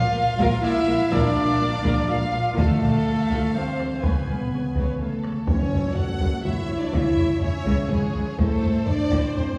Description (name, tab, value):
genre	cinematic, epic orchestral film score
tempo	124 BPM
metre	3/4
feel	straight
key	F# minor from 5.5 s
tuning	A4 = 444 Hz
part	warm symphonic violin section	melody	0.0-9.6 s	G#4 to G#5	-38 LUFS	equal	none
part	mellow large flute ensemble	second line	0.0-5.2 s	A4 to F5	-36 LUFS	equal	none
part	rich symphonic violin section	second line	0.0-9.6 s	G#4 to F#5	-38 LUFS	equal	none
part	mellow French horn section	sustained chords	0.0-9.6 s	G#3 to F#4	-27 LUFS	equal	none
part	clear trumpet	stabs	0.0-5.2 s	A4 to F5	-33 LUFS	equal	none
part	warm symphonic cello section	bass	0.1-9.4 s	F#2 to D3	-32 LUFS	equal	none
part	warm symphonic double bass section	bass	0.1-9.4 s	F#1 to D2	-32 LUFS	equal	none
part	warm symphonic viola section	accompaniment	0.2-9.6 s	F4 to E#5	-37 LUFS	equal	none
part	taiko ensemble	drums	0.4-9.6 s	none	-28 LUFS	equal	none
part	timpani	percussion	5.5-6.2 s	F#2	-35 LUFS	equal	none
room	wet scoring stage reverb, RT60 2.0 s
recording	heard from further back in the room, studio reverb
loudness	-23 LUFS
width	mono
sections	0.0-5.5 A section; 5.5-9.6 B section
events	none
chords	0.0 Bb; 2.6 Dm; 4.0 C#7(no3); 5.5 F#m; 6.9 C#m; 8.4 Am